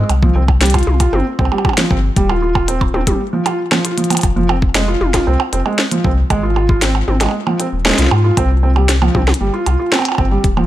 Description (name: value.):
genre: IDM.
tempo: 116 BPM.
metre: 4/4.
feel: straight.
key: F minor.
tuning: A4 = 440 Hz.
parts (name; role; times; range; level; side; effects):
felt-muted upright piano; arpeggios; 0.0-10.7 s; F3 to F4; -18 LUFS; right 2 dB; tape echo.
warm sub bass; bass; 0.0-10.7 s; Eb1 to Ab2; -15 LUFS; equal; none.
glitchy drum kit; drums; 0.1-10.7 s; hi-hat, percussion blips, snare drum, toms; -18 LUFS; right 1 dB; small room ambience, ping-pong delay.
electronic kick drum; drums; 0.2-10.5 s; none; -18 LUFS; equal; small room ambience.
room: little or no reverb.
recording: none.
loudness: -12 LUFS.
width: side -14 dB against mid.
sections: 0.0-4.2 A section; 4.2-10.7 B section.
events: drum fill 4.0.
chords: 0.1 C5; 2.2 N.C.; 4.2 F5; 6.3 Ab; 8.4 C5.